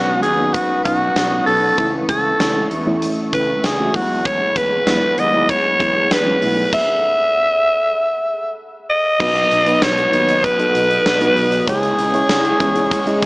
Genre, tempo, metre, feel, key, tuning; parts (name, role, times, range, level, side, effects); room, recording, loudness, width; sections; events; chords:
1980s-style pop; 97 BPM; 4/4; straight; A4 = 436 Hz
raspy alto saxophone; melody; 0.0-13.3 s; F#4 to E5; -16 LUFS; equal
mellow FM electric piano; accompaniment; 0.0-13.3 s; E3 to D#5; -21 LUFS; equal; chorus, tremolo
glassy FM pad; sustained chords; 0.0-13.3 s; A3 to D#6; -27 LUFS; equal; ensemble chorus, built-in reverb
fretless electric bass; bass; 0.0-13.3 s; B1 to E2; -29 LUFS; equal; ensemble chorus
huge arena drum kit; drums; 0.2-13.3 s; crash cymbal, hi-hat, kick drum, snare drum, tambourine; -23 LUFS; equal; gated reverb
biting overdriven guitar; accompaniment; 9.2-13.3 s; B2 to C#4; -29 LUFS; left 1 dB
light reverb, studio ambience; small speaker sound; -14 LUFS; side -24 dB against mid
0.0-9.2 A section; 9.2-13.3 B section
0.0 Badd9; 1.8 A/C#; 3.9 Eadd9; 6.4 B7sus4; 9.2 B; 11.7 C#m